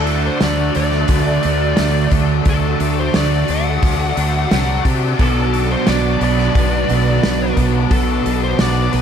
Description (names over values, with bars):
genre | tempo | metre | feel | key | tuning
rock, shoegaze and dream pop | 88 BPM | 4/4 | straight | D major | A4 = 440 Hz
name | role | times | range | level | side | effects
fuzz lead guitar | melody | 0.0-9.0 s | A4 to F#5 | -23 LUFS | left 2 dB | distortion, ping-pong delay
soft string machine | sustained chords | 0.0-9.0 s | F#4 to D6 | -25 LUFS | left 1 dB | ensemble chorus
biting overdriven guitar | riff | 0.0-9.0 s | B2 to D4 | -23 LUFS | left 10 dB | analog chorus
biting overdriven guitar | riff | 0.0-9.0 s | B2 to F#4 | -21 LUFS | right 11 dB | reverse reverb
growling fingered electric bass | bass | 0.0-9.0 s | B1 to C3 | -19 LUFS | equal | overdrive
loose indie drum kit | drums | 0.1-9.0 s | hi-hat, kick drum, snare drum | -20 LUFS | equal | none
room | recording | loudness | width
light reverb | none | -14 LUFS | side -8 dB against mid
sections
0.0-9.0 A section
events
none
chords
0.0 D; 5.2 Bm7